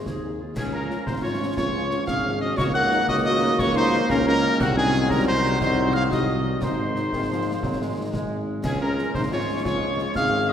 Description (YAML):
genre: military-style march for wind band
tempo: 119 BPM (dotted quarters)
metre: 6/8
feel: straight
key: Db major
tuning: A4 = 440 Hz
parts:
  - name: bright cornet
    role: melody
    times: 0.0-10.5 s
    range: Gb4 to Gb5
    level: -28 LUFS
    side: right 1 dB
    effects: none
  - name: mellow piccolo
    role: second line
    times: 0.0-10.5 s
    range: Gb5 to Gb6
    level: -28 LUFS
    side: left 2 dB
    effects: none
  - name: bright trombone section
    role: sustained chords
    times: 0.0-10.5 s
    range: Eb3 to Eb4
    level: -30 LUFS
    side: right 1 dB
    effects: none
  - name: dark woodwind section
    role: second line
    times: 0.1-10.5 s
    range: C4 to Bb4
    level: -29 LUFS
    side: left 1 dB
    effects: none
  - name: warm tuba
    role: bass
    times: 0.1-10.5 s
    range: Ab1 to Eb2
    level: -26 LUFS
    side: right 1 dB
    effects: none
  - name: concert snare drum, concert bass drum and clash cymbals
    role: drums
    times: 0.1-10.3 s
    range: none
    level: -31 LUFS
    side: equal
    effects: none
  - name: mellow French horn section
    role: accompaniment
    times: 0.2-10.5 s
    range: Eb3 to Ab4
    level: -31 LUFS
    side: left 4 dB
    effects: none
room: wet concert hall reverb, RT60 2.0 s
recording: heard from further back in the room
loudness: -20 LUFS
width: side -9 dB against mid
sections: 0.6-10.5 A section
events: none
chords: 0.0 Ab; 0.6 Db; 2.6 Ebm7/Db; 4.6 Ab7/C; 6.6 Ab; 8.6 Db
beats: 0.06 | 0.56 1.07 | 1.57 2.08 | 2.58 3.09 | 3.60 4.10 | 4.60 5.11 | 5.61 6.12 | 6.62 7.13 | 7.63 8.14 | 8.64 9.14 | 9.65 10.15